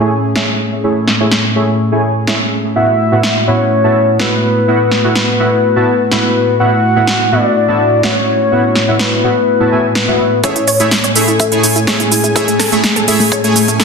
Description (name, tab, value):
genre	progressive house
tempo	125 BPM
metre	4/4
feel	straight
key	A major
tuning	A4 = 440 Hz
part	warm analog pad	sustained chords	0.0-13.8 s	A2 to G#5	-17 LUFS	right 1 dB	chorus, sidechain pumping
part	soft supersaw	stabs	0.0-13.8 s	A2 to A5	-16 LUFS	right 1 dB	sidechain pumping, low-pass filter, tape echo
part	big-room dance drum kit	drums	0.4-13.8 s	cabasa, hi-hat, snare drum	-15 LUFS	right 1 dB	overdrive, sidechain pumping on cymbals, low-pass filter on cymbals, low-pass filter on snare, sidechain pumping on hats, low-pass filter on hats, sidechain pumping on perc, low-pass filter on perc, low-pass filter on room
part	soft octave-layered synth lead	melody	2.8-13.8 s	G#4 to F#5	-14 LUFS	left 3 dB	chorus, sidechain pumping, tape echo
part	wide unison pluck	arpeggios	10.4-13.8 s	A3 to E5	-17 LUFS	right 1 dB	sidechain pumping, tape echo
part	electronic kick drum	drums	10.4-13.8 s	none	-22 LUFS	equal	high-pass filter on kick, high-pass filter on room
room	wet digital room reverb, RT60 1.0 s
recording	dense, heavily limited modern master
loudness	-10 LUFS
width	side -5 dB against mid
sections	0.0-10.4 A section; 10.4-13.8 B section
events	filter sweep on analog synth pad 0.0-10.4; build-up 10.4-13.8; filter sweep on soft synth lead 10.4-13.8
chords	0.0 Amaj7; 2.8 Esus2/A; 10.4 Amaj7